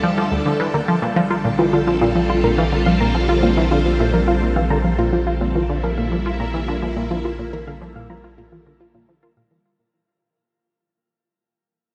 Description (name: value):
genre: ambient, sequencer-driven space music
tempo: 106 BPM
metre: 4/4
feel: straight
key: unclear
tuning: A4 = 440 Hz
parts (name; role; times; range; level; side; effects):
- phased string machine; sustained chords; 0.0-9.7 s; D3 to A4; -26 LUFS; equal; ensemble chorus, phaser, shimmer reverb
- tight sequenced synth; riff; 0.0-9.6 s; D2 to F4; -23 LUFS; equal; chorus, shimmer reverb, analog delay
- round analog bass; bass; 0.0-9.6 s; Bb1 to D2; -26 LUFS; equal; tube saturation
- soft round pluck; arpeggios; 0.7-9.5 s; F4 to Bb5; -25 LUFS; equal; chorus, shimmer reverb, analog delay
room: wet huge ambient reverb, RT60 8.6 s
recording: none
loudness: -19 LUFS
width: mono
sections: 0.0-9.7 A section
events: fade-out 3.6-9.7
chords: 0.0 Dm; 0.6 Bb